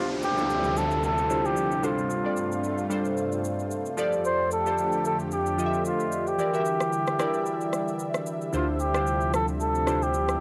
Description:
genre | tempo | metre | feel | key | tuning
amapiano | 112 BPM | 4/4 | swing 55% on 16ths | D minor | A4 = 443 Hz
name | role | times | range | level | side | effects
trumpet with bucket mute | melody | 0.0-10.4 s | F4 to C5 | -30 LUFS | equal | analog delay
glassy digital keys | accompaniment | 0.0-10.4 s | D3 to E5 | -31 LUFS | equal | chorus, cassette tape
lush unison pad | sustained chords | 0.0-10.4 s | D2 to E5 | -35 LUFS | equal | chorus, phaser, cassette tape
downlifter | sound effects | 0.0-4.2 s | none | -39 LUFS | equal | none
electronic shaker and rim click | drums | 0.2-10.4 s | none | -38 LUFS | equal | cassette tape
round analog bass | bass | 8.5-10.4 s | D2 | -33 LUFS | equal | none
room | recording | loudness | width
light reverb | home recording on cassette | -26 LUFS | mono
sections
0.0-10.4 A section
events
none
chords
0.0 Dm11; 1.8 G9sus4; 4.0 F69; 6.4 Em7b5; 8.5 Dm11

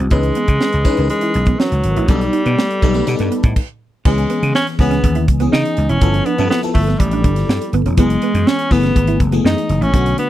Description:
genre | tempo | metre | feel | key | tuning
polished 1980s jazz-funk pop | 122 BPM | 4/4 | straight | unclear | A4 = 439 Hz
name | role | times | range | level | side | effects
FM electric piano | accompaniment | 0.0-10.3 s | D3 to B4 | -20 LUFS | left 3 dB | phaser, ensemble chorus
mellow electric guitar | riff | 0.0-10.3 s | A3 to E4 | -23 LUFS | right 6 dB | analog chorus
vintage slap bass | bass | 0.0-10.1 s | E1 to C#3 | -17 LUFS | equal | none
bright alto saxophone | melody | 0.1-10.3 s | F#3 to D#4 | -20 LUFS | equal | slapback echo
tight funk drum kit | drums | 0.1-10.3 s | crash cymbal, hi-hat, kick drum, snare drum | -17 LUFS | equal | none
room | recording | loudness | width
little or no reverb | dry, close 1970s-style studio recording | -13 LUFS | side -13 dB against mid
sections
0.0-4.1 A section; 4.1-10.3 B section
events
stop 3.6-4.1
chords
0.1 C#m9; 2.1 Baug7; 4.1 C#m7; 6.0 G13; 8.0 F#m11

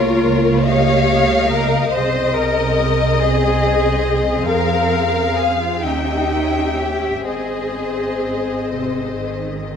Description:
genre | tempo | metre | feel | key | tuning
classical, slow romantic movement for string orchestra | 41-49 BPM (dotted quarters) | 6/8 | rubato | Ab major | A4 = 437 Hz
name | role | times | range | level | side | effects
warm studio violin section | melody | 0.0-9.8 s | Db5 to F5 | -25 LUFS | left 7 dB | none
warm studio violin section | second line | 0.0-9.4 s | Bb4 to G5 | -22 LUFS | left 4 dB | none
rich studio viola section | accompaniment | 0.0-9.8 s | Bb3 to Ab4 | -22 LUFS | left 1 dB | none
warm studio cello section | bass | 0.0-9.8 s | C3 to Db5 | -21 LUFS | right 1 dB | none
warm studio double bass section | bass | 0.0-9.8 s | Ab1 to F2 | -22 LUFS | right 4 dB | none
room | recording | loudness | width
moderate scoring stage reverb, RT60 1.6 s | minimal, uncompressed stereo recording | -15 LUFS | side -7 dB against mid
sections
0.0-9.8 A section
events
none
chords
0.0 Bbm/Db; 0.7 Eb7/Db; 1.9 Ab/C; 4.5 Fm; 5.8 Eb7b9; 7.3 Ab

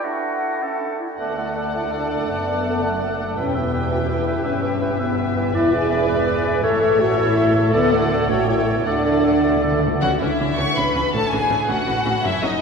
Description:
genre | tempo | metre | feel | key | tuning
classical | 109 BPM (dotted quarters) | 6/8 | straight | D major | A4 = 444 Hz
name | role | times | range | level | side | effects
clear oboe | second line | 0.0-10.0 s | F#4 to F#5 | -30 LUFS | right 1 dB | none
large flute ensemble | second line | 0.0-10.0 s | E5 to A5 | -30 LUFS | left 2 dB | none
warm clarinet | second line | 0.0-10.0 s | C#4 to D5 | -30 LUFS | equal | none
warm bassoon | accompaniment | 0.0-10.0 s | E3 to A3 | -27 LUFS | right 4 dB | none
warm symphonic violin section | melody | 1.2-12.6 s | D#5 to C#6 | -27 LUFS | left 2 dB | none
warm symphonic violin section | second line | 1.2-12.6 s | D#4 to D5 | -29 LUFS | left 3 dB | none
warm symphonic viola section | accompaniment | 1.2-12.5 s | E3 to B4 | -28 LUFS | right 1 dB | none
mellow French horn section | sustained chords | 1.2-9.8 s | A3 to A4 | -22 LUFS | left 2 dB | none
warm symphonic cello section | bass | 1.2-12.5 s | D2 to D3 | -28 LUFS | right 2 dB | none
warm symphonic double bass section | bass | 1.2-12.5 s | E1 to D2 | -28 LUFS | right 2 dB | none
timpani | percussion | 8.9-9.9 s | D3 | -30 LUFS | equal | none
room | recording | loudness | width
wet cathedral reverb, RT60 6.8 s | recorded in a church or concert hall | -17 LUFS | side -5 dB against mid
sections
0.0-1.2 A section; 1.2-10.0 B section; 10.0-12.6 C section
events
timpani fill 8.9-10.0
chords
0.0 D/A; 1.2 D; 2.3 D/F#; 3.4 Em; 4.5 Em/G; 5.5 E7; 6.6 A; 7.7 D; 8.3 A7; 8.9 D; 10.0 C#m; 11.1 A

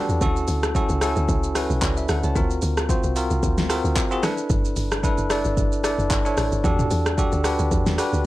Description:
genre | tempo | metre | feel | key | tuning
amapiano | 112 BPM | 4/4 | swing 55% on 16ths | unclear | A4 = 435 Hz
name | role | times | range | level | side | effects
bell-like tine electric piano | accompaniment | 0.0-8.3 s | C4 to A5 | -24 LUFS | equal | fast stereo tremolo
woody log drum bass | bass | 0.1-8.2 s | F#1 to E2 | -24 LUFS | equal | none
deep house drum kit | drums | 0.1-8.2 s | handclaps, hi-hat, kick drum, rim click, shaker, snare drum, toms | -24 LUFS | equal | none
room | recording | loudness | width
little or no reverb | dry, gritty hardware recording | -19 LUFS | side -17 dB against mid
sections
0.0-8.3 A section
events
none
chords
0.2 Dmaj9; 2.4 D7alt; 4.2 G69; 6.6 Em11

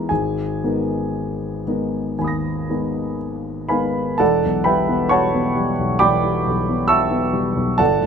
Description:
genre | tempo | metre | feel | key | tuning
classical, impressionist solo piano | 55-70 BPM | 4/4 | rubato | G# dorian, E dorian from 4.2 s | A4 = 440 Hz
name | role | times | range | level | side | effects
warm grand piano | solo | 0.0-8.1 s | E1 to A#6 | -17 LUFS | equal | none
room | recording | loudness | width
light reverb | minimal, uncompressed stereo recording | -18 LUFS | side -6 dB against mid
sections
0.0-4.2 A section; 4.2-8.1 B section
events
none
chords
0.1 G#madd9; 4.2 Em11

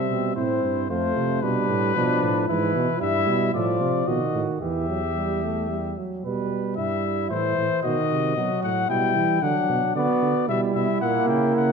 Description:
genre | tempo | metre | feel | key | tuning
classical, imitative canzona for brass ensemble | 113 BPM | 3/4 | straight | E minor from 3.0 s | A4 = 441 Hz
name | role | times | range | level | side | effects
mellow trumpet | melody | 0.0-11.7 s | B4 to G5 | -26 LUFS | left 10 dB | none
mellow flugelhorn | second line | 0.0-11.7 s | C4 to B4 | -29 LUFS | right 6 dB | none
warm trombone | accompaniment | 0.0-11.7 s | D#3 to C4 | -26 LUFS | right 2 dB | none
mellow bass trombone | bass | 0.0-11.7 s | E2 to E3 | -28 LUFS | right 3 dB | none
room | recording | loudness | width
wet recital hall reverb, RT60 1.4 s | dark, warm production | -21 LUFS | side -5 dB against mid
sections
0.0-6.2 A section; 6.2-11.7 B section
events
none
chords
0.0 C; 0.9 F; 1.4 Bdim; 2.5 E/G#; 3.0 Em/G; 3.5 F/A; 4.1 B; 4.6 Em; 6.2 Em/B; 7.3 Am; 7.8 B; 8.9 Em/B; 9.4 Bm; 10.5 Em/B; 11.0 F#/A#

